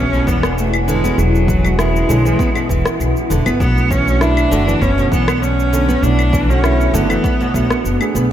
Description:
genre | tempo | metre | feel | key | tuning
organic downtempo | 99 BPM | 4/4 | swing 53% on 16ths | E mixolydian | A4 = 440 Hz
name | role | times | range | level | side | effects
bright cello | melody | 0.0-8.2 s | F#3 to D4 | -19 LUFS | equal | analog delay
felt-muted upright piano | accompaniment | 0.0-8.3 s | D3 to C#5 | -24 LUFS | right 4 dB | sidechain pumping, dub echo
granular cloud pad | sustained chords | 0.2-8.3 s | B3 to G#5 | -24 LUFS | equal | built-in reverb, vintage 12-bit sampler grit, sidechain pumping
nylon-string guitar | arpeggios | 0.0-8.3 s | B2 to E4 | -21 LUFS | equal | dub echo
upright bass | bass | 0.0-8.3 s | E1 to B1 | -17 LUFS | equal | none
impact | sound effects | 0.0-1.2 s | none | barely audible | none | none
electronic cabasa, rim click and claves | drums | 0.1-8.3 s | none | -24 LUFS | left 2 dB | dub echo
electronic kick drum | drums | 0.3-7.7 s | none | -20 LUFS | equal | none
room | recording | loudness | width
moderate echo chamber reverb, RT60 2.2 s | echo-heavy mix | -13 LUFS | side -11 dB against mid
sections
0.0-8.3 A section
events
impact 0.0-1.2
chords
0.0 Eadd9; 3.6 Bm7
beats
0.57 | 1.18 1.79 2.39 3.00 | 3.60 4.21 4.82 5.42 | 6.03 6.63 7.24 7.85

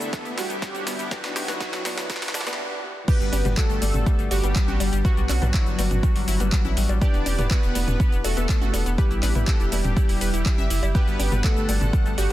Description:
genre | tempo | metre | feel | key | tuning
progressive house | 122 BPM | 4/4 | straight | G major | A4 = 438 Hz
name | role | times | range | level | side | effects
soft supersaw | melody | 0.0-12.3 s | F#3 to D5 | -30 LUFS | equal | lush chorus, sidechain pumping, digital delay
soft synth bell | second line | 0.0-12.3 s | F#4 to D5 | -37 LUFS | right 1 dB | none
lush unison pad | sustained chords | 0.0-2.6, 10.9-12.3 s | D3 to F#5 | -37 LUFS | equal | chorus, sidechain pumping
dark grand piano | stabs | 0.0-12.3 s | B3 to F#5 | -34 LUFS | left 4 dB | sidechain pumping, digital delay
deep house drum kit | drums | 0.0-12.3 s | cabasa, crash cymbal, handclaps, hi-hat, snare drum | -30 LUFS | equal | overdrive, high-pass filter on snare, sidechain pumping on hats, high-pass filter on hats, sidechain pumping on perc, high-pass filter on perc, sidechain pumping on cymbals, high-pass filter on cymbals
riser | sound effects | 0.1-2.6 s | none | -37 LUFS | right 1 dB | none
analog pluck | arpeggios | 0.1-12.3 s | G3 to E5 | -32 LUFS | left 1 dB | chorus, sidechain pumping, digital delay
electronic kick drum | drums | 0.1-12.0 s | none | -21 LUFS | equal | overdrive
round analog bass | bass | 3.2-12.3 s | E1 to B1 | -24 LUFS | equal | sidechain pumping
electronic bongos, congas and toms | percussion | 3.3-12.3 s | none | -30 LUFS | left 1 dB | sidechain pumping on perc, sidechain pumping on toms
room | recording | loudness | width
light reverb | dense, heavily limited modern master, high-pass filter | -20 LUFS | side -14 dB against mid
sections
0.0-3.1 A section; 3.1-12.3 B section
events
build-up 0.0-3.1; drum fill 0.0-2.6; riser 0.1-2.6; stop 2.6-3.1; drop 3.1-12.3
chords
0.0 Gmaj7; 7.0 Em7; 10.9 Gmaj7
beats
0.13 0.62 | 1.11 1.60 2.10 2.59 | 3.08 3.57 4.06 4.56 | 5.05 5.54 6.03 6.52 | 7.01 7.51 8.00 8.49 | 8.98 9.47 9.97 10.46 | 10.95 11.44 11.93

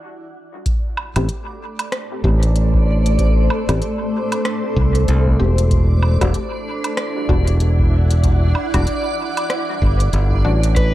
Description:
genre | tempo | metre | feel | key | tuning
ambient dub | 95 BPM | 4/4 | swing 59% on 16ths | A dorian | A4 = 439 Hz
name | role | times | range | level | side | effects
granular cloud pad | sustained chords | 1.6-10.9 s | A3 to F#5 | -25 LUFS | equal | built-in reverb
electronic kick drum | drums | 0.7-10.9 s | none | -21 LUFS | equal | studio reverb
organic electronic drum kit | drums | 0.7-10.9 s | hi-hat, rim click, woodblock | -28 LUFS | right 1 dB | overdrive, studio reverb, dub echo
backwards swelling texture | texture | 1.5-10.9 s | D4 to D5 | -28 LUFS | right 3 dB | built-in reverb
filtered dub chord stab | stabs | 1.2-10.6 s | G3 to G4 | -28 LUFS | left 2 dB | wide subtle chorus, dub echo
modern bright fingered electric bass | bass | 1.2-10.9 s | E1 to C2 | -15 LUFS | equal | tube saturation
overdriven slide guitar | melody | 10.8-10.9 s | B4 | -20 LUFS | equal | none
room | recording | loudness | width
light reverb | echo-heavy mix | -15 LUFS | side -14 dB against mid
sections
0.7-10.9 A section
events
break 0.0-0.7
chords
0.0 N.C.; 0.7 Am7; 5.7 Em9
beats
0.03 | 0.66 1.29 1.92 2.56 | 3.19 3.82 4.45 5.08 | 5.71 6.34 6.98 7.61 | 8.24 8.87 9.50 10.13 | 10.77

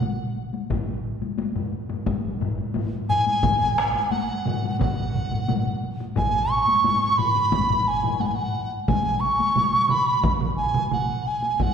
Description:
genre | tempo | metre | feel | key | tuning
japanese traditional, taiko drum ensemble | 88 BPM | 4/4 | straight | unclear | A4 = 440 Hz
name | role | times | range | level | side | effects
mellow hollow large dizi | melody | 0.0-11.7 s | F#5 to C#6 | -22 LUFS | right 1 dB | none
solo taiko drums | percussion | 0.0-11.1 s | none | -29 LUFS | right 3 dB | none
taiko ensemble | percussion | 0.0-11.7 s | none | -30 LUFS | left 4 dB | none
taiko ensemble | percussion | 0.7-11.7 s | none | -28 LUFS | left 3 dB | none
taiko ensemble | percussion | 0.7-11.7 s | none | -29 LUFS | equal | none
room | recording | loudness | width
wet concert hall reverb, RT60 2.0 s | recorded in a church or concert hall, nothing above 10.7 kHz | -21 LUFS | side -7 dB against mid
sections
0.0-11.7 A section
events
none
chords
none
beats
0.03 | 0.71 1.40 2.08 2.76 | 3.44 4.12 4.81 5.49 | 6.17 6.85 7.53 8.21 | 8.89 9.57 10.25 10.92 | 11.60

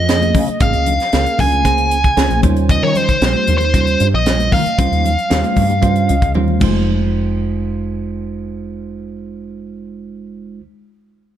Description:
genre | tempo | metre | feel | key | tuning
electric jazz fusion | 115 BPM | 4/4 | straight | F minor | A4 = 440 Hz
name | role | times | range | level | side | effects
biting lead guitar | melody | 0.0-6.3 s | C5 to Ab5 | -17 LUFS | right 1 dB | overdrive
woody fretless electric bass | bass | 0.0-10.6 s | F1 to Eb3 | -18 LUFS | left 1 dB | ensemble chorus
bell-like tine electric piano | accompaniment | 0.1-10.6 s | G3 to Ab5 | -21 LUFS | right 6 dB | none
tight funk drum kit | drums | 0.1-6.7 s | crash cymbal, hi-hat, kick drum, snare drum, toms | -19 LUFS | equal | none
congas | percussion | 0.2-7.1 s | none | -24 LUFS | left 9 dB | none
room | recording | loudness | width
light reverb | none | -13 LUFS | side -10 dB against mid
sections
0.0-6.9 A section; 6.9-11.1 B section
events
tine electric piano fill 1.9-2.7, 5.8-6.9; drum fill 6.4-6.9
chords
0.0 Bbm9; 2.4 Eb13; 6.6 Fm7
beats
0.09 | 0.61 1.13 1.65 2.17 | 2.69 3.22 3.74 4.26 | 4.78 5.31 5.83 6.35 | 6.87 7.40 7.92 8.44 | 8.96 9.49 10.01 10.53

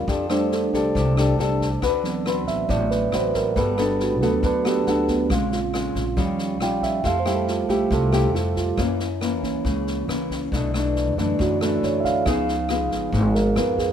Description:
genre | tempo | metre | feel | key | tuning
bossa nova | 138 BPM | 4/4 | straight | unclear | A4 = 441 Hz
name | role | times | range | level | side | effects
mellow tine electric piano | accompaniment | 0.0-13.9 s | Db3 to G5 | -23 LUFS | right 5 dB | none
nylon-string guitar | accompaniment | 0.0-13.9 s | F#2 to B4 | -25 LUFS | left 5 dB | none
upright bass | bass | 0.0-13.9 s | G1 to F#2 | -26 LUFS | equal | none
swinging big-band drum kit | drums | 0.1-13.8 s | kick drum, rim click, snare drum | -31 LUFS | left 1 dB | none
room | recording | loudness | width
little or no reverb | minimal, uncompressed stereo recording | -20 LUFS | side -9 dB against mid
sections
0.0-13.9 A section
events
tine electric piano solo 0.0-13.9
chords
0.1 F69; 1.8 D13; 3.6 Gmaj9; 5.3 Bbm7; 6.2 Eb9; 7.0 Fmaj9; 8.8 F#7; 10.5 Bm7; 12.3 C#7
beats
| 0.08 0.52 0.95 1.39 | 1.82 2.26 2.70 3.13 | 3.57 4.00 4.44 4.87 | 5.31 5.74 6.18 6.61 | 7.05 7.48 7.92 8.35 | 8.79 9.22 9.66 10.09 | 10.53 10.96 11.39 11.83 | 12.26 12.70 13.13 13.56

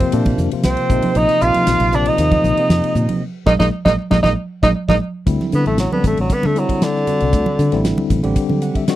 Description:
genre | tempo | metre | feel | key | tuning
electric jazz fusion | 116 BPM | 4/4 | straight | unclear | A4 = 435 Hz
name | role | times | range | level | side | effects
warm tenor saxophone | melody | 0.0-7.8 s | D3 to F4 | -18 LUFS | equal | none
bright reedy silver concert flute | second line | 0.0-5.0 s | C5 to F5 | -25 LUFS | right 6 dB | none
tine electric piano | accompaniment | 0.0-9.0 s | C3 to F#5 | -21 LUFS | left 2 dB | slow stereo tremolo
fingered electric bass | bass | 0.0-8.7 s | A1 to D3 | -19 LUFS | equal | none
damped 70s drum kit | drums | 0.0-9.0 s | hi-hat, kick drum, ride cymbal, snare drum | -20 LUFS | equal | none
congas | percussion | 0.3-8.6 s | none | -23 LUFS | right 3 dB | none
room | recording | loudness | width
little or no reverb | dry, close 1970s-style studio recording | -14 LUFS | side -14 dB against mid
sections
0.0-5.3 A section; 5.3-9.0 B section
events
band accent 3.2-5.3; tine electric piano fill 4.5-5.3, 8.4-9.0; drum fill 4.8-5.3; tenor saxophone solo 5.3-9.0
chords
0.0 Fsus4; 0.9 Bb9sus4; 5.3 D9sus4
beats
0.13 0.64 | 1.16 1.67 2.18 2.70 | 3.21 3.73 4.24 4.76 | 5.27 5.79 6.30 6.82 | 7.34 7.85 8.37 8.88

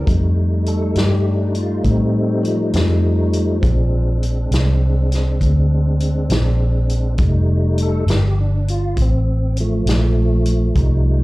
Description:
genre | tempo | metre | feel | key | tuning
slow blues | 67 BPM (dotted quarters) | 12/8 | straight | F mixolydian | A4 = 438 Hz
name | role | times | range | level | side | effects
tonewheel organ | sustained chords | 0.0-11.2 s | F3 to A4 | -21 LUFS | equal | slow rotary speaker, chorus vibrato
vintage muted fingered electric bass | bass | 0.0-11.2 s | F1 to A2 | -16 LUFS | equal | none
vintage drum kit | drums | 0.1-10.9 s | hi-hat, kick drum, snare drum | -22 LUFS | equal | none
room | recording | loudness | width
small room ambience | live gig heard through the venue's PA, club reverb | -15 LUFS | side -19 dB against mid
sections
0.1-11.2 A section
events
tonewheel organ solo 0.1-11.2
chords
0.1 F9; 3.6 Bb9; 7.2 F9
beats
| 0.08 0.96 1.85 2.74 | 3.63 4.52 5.41 6.30 | 7.19 8.09 8.98 9.87 | 10.76

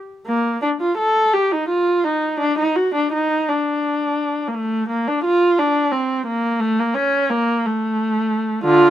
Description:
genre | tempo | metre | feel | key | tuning
classical, baroque-style suite movement for unaccompanied viola | 57 BPM (dotted quarters) | 6/8 | uneven beats, rubato | unclear | A4 = 439 Hz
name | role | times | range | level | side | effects
warm viola | solo | 0.3-8.9 s | D3 to A4 | -16 LUFS | equal | none
room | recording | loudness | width
light reverb | none | -17 LUFS | side -11 dB against mid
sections
0.3-8.9 A section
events
none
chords
none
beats
| 0.27 1.34 | 2.41 3.49 | 4.56 5.59 | 6.61 7.65 | 8.66

